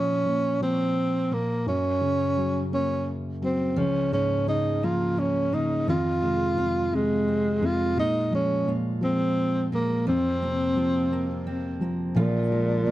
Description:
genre	pop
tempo	57 BPM (dotted quarters)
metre	6/8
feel	straight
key	Bb minor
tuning	A4 = 441 Hz
part	breathy tenor saxophone	melody	0.0-12.9 s	Bb2 to F4	-25 LUFS	equal	none
part	felt-muted upright piano	accompaniment	0.0-12.9 s	Bb1 to Bb3	-27 LUFS	equal	none
part	fingerpicked steel-string acoustic guitar	arpeggios	3.8-12.9 s	Eb3 to Ab4	-31 LUFS	right 1 dB	none
room	light reverb, small room ambience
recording	dark, warm production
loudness	-23 LUFS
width	side -15 dB against mid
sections	0.0-12.2 A section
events	none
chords	0.0 Bbm; 1.7 Gb; 3.8 Db6; 5.9 Fm7; 8.0 Bb5; 10.1 Fsus4; 12.2 Bb7(no3)

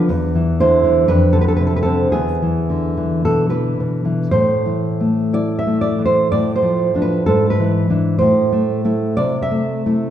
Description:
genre	romantic piece for solo classical guitar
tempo	54-63 BPM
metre	2/4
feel	rubato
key	A minor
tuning	A4 = 440 Hz
part	nylon-string guitar	solo	0.0-10.1 s	E2 to E5	-14 LUFS	equal	none
room	wet scoring stage reverb, RT60 1.6 s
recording	recorded in a church or concert hall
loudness	-14 LUFS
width	side -10 dB against mid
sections	0.0-4.3 A section; 4.3-10.1 B section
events	none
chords	0.1 Cadd9/E; 1.1 Dm/F; 2.1 E; 4.3 Am; 6.3 Dm/A; 7.3 E7/G#; 8.2 Am; 9.2 Am/C

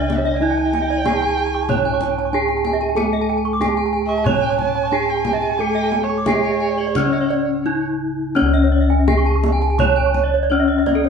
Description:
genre	Balinese gamelan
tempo	84-94 BPM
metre	4/4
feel	straight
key	C# pelog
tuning	A4 = 440 Hz
part	gamelan-type bronze metallophone	melody	0.0-11.1 s	C#4 to C#5	-20 LUFS	right 1 dB	none
part	dark erhu	second line	0.0-7.9 s	C#5 to A5-31c	-26 LUFS	right 4 dB	none
part	gamelan-type bronze metallophone	accompaniment	0.0-8.4 s	C#3 to C#4	-28 LUFS	right 4 dB	none
part	gamelan-type bronze metallophone	arpeggios	0.0-11.1 s	C#5 to C#6	-26 LUFS	right 5 dB	none
part	gamelan-type bossed gongs	bass	0.0-11.1 s	C#2 to A4-40c	-22 LUFS	left 1 dB	none
part	gamelan-type bronze metallophone	arpeggios	0.1-11.0 s	A4-40c to D6	-25 LUFS	left 2 dB	none
part	kendang	percussion	0.1-11.1 s	none	-26 LUFS	left 2 dB	none
room	moderate studio reverb, RT60 0.8 s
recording	band playing live in one room, nothing above 11.0 kHz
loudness	-16 LUFS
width	side -6 dB against mid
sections	0.0-8.4 A section; 8.4-11.1 B section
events	break 7.3-8.4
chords	none

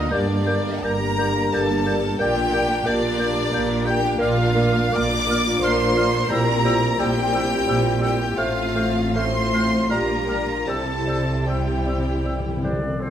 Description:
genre	classical, slow romantic movement for symphony orchestra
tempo	74-91 BPM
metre	3/4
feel	rubato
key	unclear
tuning	A4 = 444 Hz
part	clear chamber violin section	melody	0.0-12.6 s	D5 to D6	-27 LUFS	left 2 dB	none
part	rich studio violin section	second line	0.0-12.6 s	D4 to D5	-30 LUFS	left 3 dB	none
part	warm oboe	second line	0.0-13.1 s	C4 to D6	-30 LUFS	equal	none
part	rich symphonic viola section	accompaniment	0.0-12.8 s	G3 to Bb4	-30 LUFS	right 1 dB	none
part	mellow French horn section	sustained chords	0.0-12.6 s	C4 to G4	-30 LUFS	left 4 dB	none
part	mellow trombone section	sustained chords	0.0-12.7 s	A2 to Bb3	-30 LUFS	right 4 dB	none
part	warm chamber double bass section	bass	0.0-12.8 s	G1 to C2	-27 LUFS	right 2 dB	none
part	warm symphonic cello section	bass	0.0-12.8 s	G2 to C3	-27 LUFS	equal	none
part	bright silver concert flute	second line	0.1-13.1 s	C5 to G6	-32 LUFS	left 1 dB	none
part	mellow clarinet	second line	0.1-13.1 s	A3 to D5	-32 LUFS	left 3 dB	none
part	mellow bassoon	accompaniment	0.1-13.1 s	F3 to Bb3	-30 LUFS	right 2 dB	none
part	timpani	percussion	10.7-13.0 s	C3	-30 LUFS	left 2 dB	none
room	wet recital hall reverb, RT60 1.6 s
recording	none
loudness	-19 LUFS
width	side -10 dB against mid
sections	0.0-13.0 A section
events	timpani fill 10.7-13.0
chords	0.1 Gm; 2.2 Gm/Bb; 4.2 Bb; 6.3 C7/Bb; 8.4 F/A; 9.9 Gm7/Bb; 10.7 C

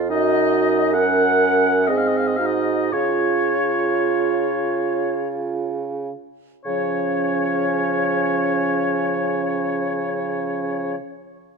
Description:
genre	classical, slow romantic movement for wind quintet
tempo	43-74 BPM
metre	3/4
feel	rubato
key	Db major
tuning	A4 = 440 Hz
part	bright clarinet	accompaniment	0.0-10.9 s	C4 to F4	-25 LUFS	right 10 dB	none
part	mellow bassoon	bass	0.0-11.0 s	F2 to Db3	-24 LUFS	right 3 dB	none
part	silver concert flute	melody	0.1-11.0 s	Db5 to Gb5	-26 LUFS	left 11 dB	none
part	warm oboe	second line	0.1-10.9 s	Db5 to Gb5	-24 LUFS	left 2 dB	none
part	clear French horn	accompaniment	0.1-11.0 s	F3 to Bb4	-26 LUFS	right 1 dB	none
room	light reverb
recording	close, detailed microphones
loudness	-18 LUFS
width	side -5 dB against mid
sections	0.0-6.7 A section; 6.7-10.7 B section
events	slowing down 0.0-6.7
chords	0.1 Ebm/Gb; 1.9 Ab7; 2.9 Db

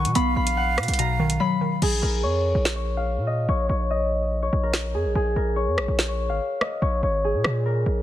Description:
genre	hip hop, drill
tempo	144 BPM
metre	4/4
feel	half-time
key	Bb phrygian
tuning	A4 = 440 Hz
part	concert harp	melody	0.0-8.0 s	Ab4 to D#6	-25 LUFS	left 1 dB	low-pass filter
part	breathy concert flute	second line	0.0-1.8 s	F5 to F#5	-29 LUFS	right 6 dB	ping-pong delay
part	hollow square pluck	accompaniment	0.0-1.8 s	B2 to B3	-25 LUFS	equal	chorus
part	hard-hitting 808-style bass	bass	0.0-8.0 s	Ab1 to B2	-24 LUFS	equal	none
part	drill drum kit	drums	0.1-7.5 s	crash cymbal, hi-hat, rim click, snare drum	-26 LUFS	equal	none
room	light reverb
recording	dense, heavily limited modern master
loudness	-21 LUFS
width	side -12 dB against mid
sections	0.0-1.8 A section; 1.8-8.0 B section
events	drums muted 1.4-1.8; hi-hats muted 1.8-8.0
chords	0.0 B; 1.8 Bbm7

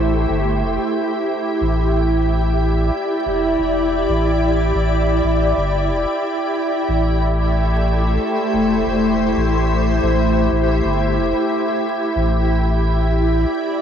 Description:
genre	ambient dub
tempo	91 BPM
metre	4/4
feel	straight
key	A minor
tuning	A4 = 440 Hz
part	soft additive organ-like pad	sustained chords	0.0-13.8 s	A3 to D5	-18 LUFS	equal	ensemble chorus, built-in reverb, cassette tape
part	warm sub bass	bass	0.0-13.5 s	E1 to A1	-19 LUFS	equal	transformer saturation
room	moderate spring reverb, RT60 2.3 s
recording	home recording on cassette, vinyl crackle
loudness	-16 LUFS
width	side -8 dB against mid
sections	0.0-13.8 A section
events	none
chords	0.0 Am7; 1.6 Em7; 6.9 Am7; 12.2 Em7

